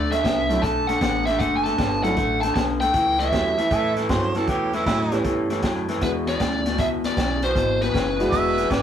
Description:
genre	electric blues shuffle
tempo	156 BPM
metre	4/4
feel	swing 67% on 8ths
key	A mixolydian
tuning	A4 = 438 Hz
part	biting lead guitar	melody	0.0-8.8 s	B4 to A5	-23 LUFS	equal	overdrive
part	electric guitar through a small old amp	riff	0.0-8.8 s	E2 to B3	-25 LUFS	left 2 dB	none
part	upright bass	bass	0.0-8.8 s	E1 to A2	-29 LUFS	right 1 dB	none
part	crunchy breakbeat drum kit	drums	0.1-8.8 s	hi-hat, kick drum, snare drum	-27 LUFS	equal	none
part	dark baby grand piano	accompaniment	0.5-8.7 s	F#3 to G4	-27 LUFS	right 1 dB	none
part	warm harmonica	second line	3.7-5.2, 8.3-8.8 s	E4 to E5	-25 LUFS	right 4 dB	overdrive
room	moderate small room reverb, RT60 0.5 s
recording	rough rehearsal-room recording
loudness	-19 LUFS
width	side -9 dB against mid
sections	0.0-8.8 A section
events	none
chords	0.0 D9; 2.9 A9; 6.0 E9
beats	0.24 0.62 1.01 | 1.39 1.78 2.16 2.55 | 2.94 3.32 3.71 4.09 | 4.48 4.86 5.25 5.63 | 6.02 6.40 6.78 7.17 | 7.55 7.93 8.32 8.70

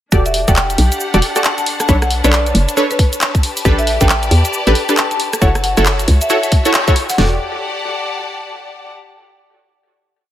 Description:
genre	UK garage, two-step garage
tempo	136 BPM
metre	4/4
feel	swing 62% on 16ths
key	E dorian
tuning	A4 = 439 Hz
part	punchy chord stab	stabs	0.1-7.4 s	D4 to D5	-18 LUFS	equal	chorus, tape echo
part	hollow knocking FM bass	bass	0.1-7.4 s	E1 to E2	-14 LUFS	equal	none
part	garage drum kit	drums	0.1-7.3 s	hi-hat, kick drum, snare drum, toms	-14 LUFS	equal	none
part	garage drum kit	drums	0.1-7.2 s	cabasa, handclaps, hi-hat, rim click	-18 LUFS	equal	none
part	clear studio string section	texture	0.1-8.9 s	D4 to A5	-23 LUFS	left 2 dB	sidechain pumping
part	marimba with medium hard mallets	melody	0.3-7.2 s	B4 to A5	-22 LUFS	left 1 dB	tape echo
room	moderate plate reverb, RT60 1.9 s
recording	dreamy mix soaked in reverb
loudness	-12 LUFS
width	side -12 dB against mid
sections	0.1-7.2 drop; 7.2-8.9 final chord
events	drop 0.1-7.2; band accent 6.7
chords	0.1 Em11; 1.7 Bm9; 3.4 A9sus4; 5.4 F#m7; 7.2 Em11 (rootless)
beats	| 0.12 0.56 1.00 1.45 | 1.89 2.33 2.77 3.21 | 3.65 4.09 4.53 4.97 | 5.42 5.86 6.30 6.74 | 7.18 7.62 8.06 8.50

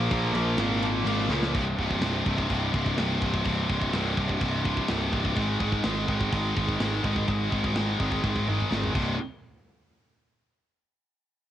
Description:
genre	heavy metal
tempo	126 BPM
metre	4/4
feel	straight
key	C minor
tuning	A4 = 439 Hz
part	heavy high-gain guitar	riff	0.0-9.1 s	C2 to Bb3	-30 LUFS	left 8 dB	distortion
part	heavy high-gain guitar	riff	0.0-9.1 s	C2 to Bb3	-32 LUFS	right 11 dB	distortion
part	high-gain distorted guitar	riff	0.0-1.5 s	Bb2 to Bb3	-31 LUFS	right 1 dB	distortion
part	fuzz picked electric bass	bass	0.0-9.2 s	C1 to Db2	-28 LUFS	equal	overdrive
part	tight metal drum kit	drums	0.1-9.1 s	crash cymbal, hi-hat, kick drum, ride cymbal, snare drum, toms	-32 LUFS	equal	cassette tape
room	small room ambience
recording	home recording on cassette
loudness	-24 LUFS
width	side -11 dB against mid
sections	0.0-1.6 A section; 1.6-9.2 B section; 9.2-11.1 C section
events	half time 0.0-1.6; drum fill 1.3, 8.2-9.2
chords	0.0 Bbm; 1.6 C5; 5.4 Ab5; 9.0 C5; 9.2 N.C.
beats	0.12 0.60 1.07 | 1.55 2.03 2.50 2.98 | 3.46 3.94 4.41 4.89 | 5.37 5.85 6.32 6.80 | 7.28 7.76 8.23 8.71

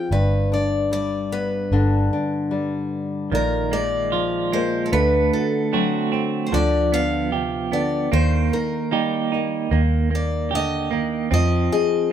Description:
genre	acoustic folk-pop ballad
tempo	75 BPM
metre	4/4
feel	straight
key	unclear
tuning	A4 = 440 Hz
part	picked old ladder-braced acoustic guitar	melody	0.0-12.1 s	A4 to G5	-26 LUFS	left 1 dB	none
part	nylon-string guitar	accompaniment	0.0-12.1 s	G2 to Ab4	-24 LUFS	left 4 dB	none
part	vintage muted fingered electric bass	bass	0.1-11.7 s	G1 to F2	-22 LUFS	equal	none
part	clean electric guitar	arpeggios	3.3-12.1 s	Eb3 to G4	-24 LUFS	right 8 dB	tremolo
room	moderate stone room reverb, RT60 1.0 s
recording	band playing live in one room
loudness	-19 LUFS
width	side -9 dB against mid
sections	0.0-12.1 A section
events	none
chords	0.1 G; 3.3 Bb7sus4; 4.9 D7; 6.5 G7/D; 8.1 Eb6; 9.7 Ebmaj7; 11.3 Fm7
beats	| 0.12 0.92 1.72 2.52 | 3.33 4.13 4.93 5.74 | 6.54 7.33 8.13 8.93 | 9.73 10.52 11.32 12.12

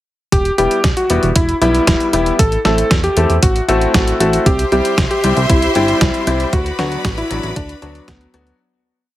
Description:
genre	italo disco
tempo	116 BPM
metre	4/4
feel	straight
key	E minor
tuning	A4 = 441 Hz
part	warm electric grand piano	melody	0.3-8.5 s	B3 to A4	-17 LUFS	equal	tape echo
part	chorused synth bass	bass	0.3-8.5 s	E1 to E2	-18 LUFS	right 1 dB	tube saturation
part	detuned 8-bit digital drum machine	drums	0.3-8.6 s	hi-hat, snare drum	-19 LUFS	equal	none
part	electronic kick drum	drums	0.3-8.2 s	none	-17 LUFS	right 1 dB	none
part	clear concert grand piano	stabs	0.6-8.6 s	F#3 to A4	-20 LUFS	left 2 dB	none
part	clear studio string section	sustained chords	4.5-8.6 s	F#4 to C6	-22 LUFS	equal	none
room	moderate plate reverb, RT60 1.3 s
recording	heavily compressed radio sound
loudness	-12 LUFS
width	side -14 dB against mid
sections	0.3-8.6 verse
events	fade-out 5.8-8.6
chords	0.3 Em; 2.4 Am; 4.5 C; 6.5 Bm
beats	| 0.32 0.84 1.36 1.88 | 2.39 2.91 3.43 3.94 | 4.46 4.98 5.50 6.01 | 6.53 7.05 7.57 8.08

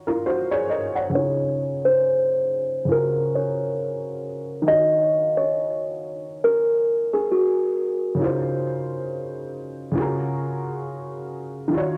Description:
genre	hip hop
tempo	68 BPM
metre	4/4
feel	swing 58% on 16ths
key	Eb dorian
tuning	A4 = 439 Hz
part	dark upright piano	accompaniment	0.0-12.0 s	Db3 to Gb5	-28 LUFS	equal	low-pass filter
part	buzzing kalimba	melody	1.2-7.7 s	Gb4 to Eb5	-23 LUFS	equal	low-pass filter
room	moderate spring reverb, RT60 2.0 s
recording	home recording on cassette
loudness	-23 LUFS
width	mono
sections	0.0-1.1 A section; 1.1-12.0 B section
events	filter sweep 1.1-12.0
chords	0.0 Ebm7; 1.1 Dbmaj7; 2.9 Gbmaj9/Db; 4.7 Ebm7; 8.2 Dbmaj7; 9.9 Gbmaj9/Db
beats	0.24 | 1.13 2.01 2.89 3.77 | 4.66 5.54 6.42 7.30 | 8.19 9.07 9.95 10.83 | 11.71

